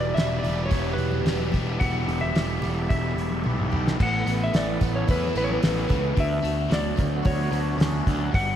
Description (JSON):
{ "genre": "psychedelic rock", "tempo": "110 BPM", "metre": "4/4", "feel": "straight", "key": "E dorian", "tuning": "A4 = 440 Hz", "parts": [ { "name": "clean lap steel guitar", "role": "melody", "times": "0.0-8.6 s", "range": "B4 to F#5", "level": "-29 LUFS", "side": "left 1 dB", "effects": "tape echo" }, { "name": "bright tonewheel organ", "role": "sustained chords", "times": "0.0-8.6 s", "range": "D3 to E5", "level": "-35 LUFS", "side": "right 5 dB", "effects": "chorus vibrato, slow rotary speaker" }, { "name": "crunchy overdriven guitar", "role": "riff", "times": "0.0-8.6 s", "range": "E2 to G4", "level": "-29 LUFS", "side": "left 1 dB", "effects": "phaser" }, { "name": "fuzz picked electric bass", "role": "bass", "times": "0.0-8.6 s", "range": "E1 to E2", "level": "-27 LUFS", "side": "equal", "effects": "overdrive" }, { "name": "cloth-damped thuddy drum kit", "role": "drums", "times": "0.2-8.5 s", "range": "crash cymbal, hi-hat, kick drum, snare drum, toms", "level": "-25 LUFS", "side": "equal", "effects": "none" }, { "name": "congas", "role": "percussion", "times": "0.4-8.2 s", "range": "none", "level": "-36 LUFS", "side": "left 2 dB", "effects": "none" } ], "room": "moderate lush hall reverb, RT60 1.7 s, studio ambience", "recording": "dreamy mix soaked in reverb", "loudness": "-22 LUFS", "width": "side -10 dB against mid", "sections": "0.0-4.0 A section; 4.0-8.6 B section", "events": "drum fill 3.4-4.0", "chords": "0.0 Em; 4.0 Aadd9; 6.2 Dmaj7", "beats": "0.17 0.72 1.27 | 1.81 2.36 2.90 3.45 | 3.99 4.54 5.08 5.62 | 6.17 6.71 7.25 7.79 | 8.34" }